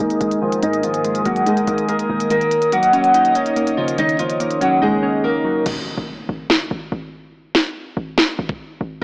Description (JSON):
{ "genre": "hip hop, trap", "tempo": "143 BPM", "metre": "4/4", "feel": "half-time", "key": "Eb minor", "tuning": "A4 = 443 Hz", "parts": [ { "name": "flamenco guitar", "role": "melody", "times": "0.0-5.6, 9.0 s", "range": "F3 to Eb5", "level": "-17 LUFS", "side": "equal", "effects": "low-pass filter" }, { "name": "glassy digital keys", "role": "accompaniment", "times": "0.0-5.7 s", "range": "Ab2 to Eb4", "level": "-21 LUFS", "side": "equal", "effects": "chorus, low-pass filter" }, { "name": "airy breathy pad", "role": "sustained chords", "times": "0.0-5.6 s", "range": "Bb4 to Eb6", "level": "-24 LUFS", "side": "equal", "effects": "chorus, low-pass filter" }, { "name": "short 808-style bass", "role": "bass", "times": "0.0-9.0 s", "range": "Eb1 to Ab1", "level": "-28 LUFS", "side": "equal", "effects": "none" }, { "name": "trap drum kit", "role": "drums", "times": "0.0-8.6 s", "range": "crash cymbal, hi-hat, kick drum, snare drum", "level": "-20 LUFS", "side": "equal", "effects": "none" }, { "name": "impact", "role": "sound effects", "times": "5.7-7.3 s", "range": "none", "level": "-34 LUFS", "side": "equal", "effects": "none" } ], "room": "moderate lush hall reverb, RT60 2.0 s", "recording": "AM radio sound", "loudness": "-15 LUFS", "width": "side -28 dB against mid", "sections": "0.0-5.7 A section; 5.7-9.0 B section", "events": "filter sweep 0.0-5.7; drums muted 4.8-5.7; break 5.7-9.0; impact 5.7-7.3", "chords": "0.0 Absus2; 2.3 Ebm7; 5.7 N.C." }